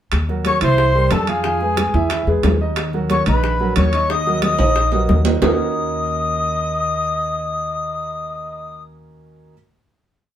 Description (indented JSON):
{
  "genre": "Afro-Cuban jazz",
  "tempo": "181 BPM",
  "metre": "4/4",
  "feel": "straight",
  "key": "Eb minor",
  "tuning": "A4 = 440 Hz",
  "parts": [
    { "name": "upright bass", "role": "bass", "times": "0.1-9.5 s", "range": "Bb1 to F2", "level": "-21 LUFS", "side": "equal", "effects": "none" },
    { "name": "bongos", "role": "percussion", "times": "0.1-5.5 s", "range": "none", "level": "-26 LUFS", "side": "left 3 dB", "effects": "none" },
    { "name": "congas", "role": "percussion", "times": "0.1-5.5 s", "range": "none", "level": "-26 LUFS", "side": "equal", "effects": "none" },
    { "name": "timbales", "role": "percussion", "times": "0.1-5.5 s", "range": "none", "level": "-23 LUFS", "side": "right 4 dB", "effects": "none" },
    { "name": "clear upright piano", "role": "accompaniment", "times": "0.3-9.5 s", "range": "Eb3 to F5", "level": "-23 LUFS", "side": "right 4 dB", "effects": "none" },
    { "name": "breathy trumpet", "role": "melody", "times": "0.5-8.8 s", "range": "Ab4 to Eb5", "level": "-22 LUFS", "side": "left 1 dB", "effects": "none" },
    { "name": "breathy bright jazz flute", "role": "second line", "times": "0.5-8.8 s", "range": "Ab5 to Eb6", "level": "-24 LUFS", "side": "left 4 dB", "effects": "none" }
  ],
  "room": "moderate studio reverb, RT60 0.6 s",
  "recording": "band playing live in one room",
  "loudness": "-16 LUFS",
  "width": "side -10 dB against mid",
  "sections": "0.1-5.4 A section; 5.4-8.1 final chord",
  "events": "drum fill 4.6-5.4",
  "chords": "0.1 Ebm; 0.8 C7; 1.4 Fdim; 2.1 E; 2.8 Ebm7"
}